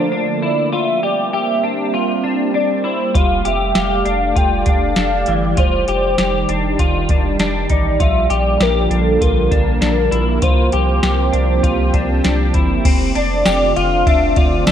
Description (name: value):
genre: dream pop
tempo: 99 BPM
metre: 4/4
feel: straight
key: F major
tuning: A4 = 443 Hz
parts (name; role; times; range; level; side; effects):
- warm velvety synth lead; melody; 0.0-14.7 s; A4 to G5; -19 LUFS; equal; chorus, phaser, ping-pong delay, slapback echo
- lush unison pad; sustained chords; 0.0-14.7 s; D3 to D5; -21 LUFS; right 2 dB; chorus
- clean electric guitar; arpeggios; 0.0-14.7 s; E3 to A4; -20 LUFS; left 3 dB; analog chorus, ping-pong delay, slapback echo
- soft vintage rhythm box; drums; 3.1-14.7 s; crash cymbal, hi-hat, kick drum, ride cymbal, snare drum, tambourine; -18 LUFS; equal; overdrive
- round analog bass; bass; 3.2-14.7 s; F1 to C2; -20 LUFS; equal; none
room: moderate lush hall reverb, RT60 1.6 s, digital ambience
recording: big arena sound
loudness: -13 LUFS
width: side -9 dB against mid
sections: 0.0-12.9 A section; 12.9-14.7 B section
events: none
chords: 0.0 Bbmaj7; 0.7 C7sus4; 3.2 F69; 5.6 F7sus2; 8.0 Bb; 10.4 C7sus4; 12.9 F6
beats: 0.13 | 0.73 1.34 1.94 2.55 | 3.16 3.76 4.37 4.97 | 5.58 6.19 6.79 7.40 | 8.01 8.61 9.22 9.82 | 10.43 11.04 11.64 12.25 | 12.85 13.46 14.06 14.67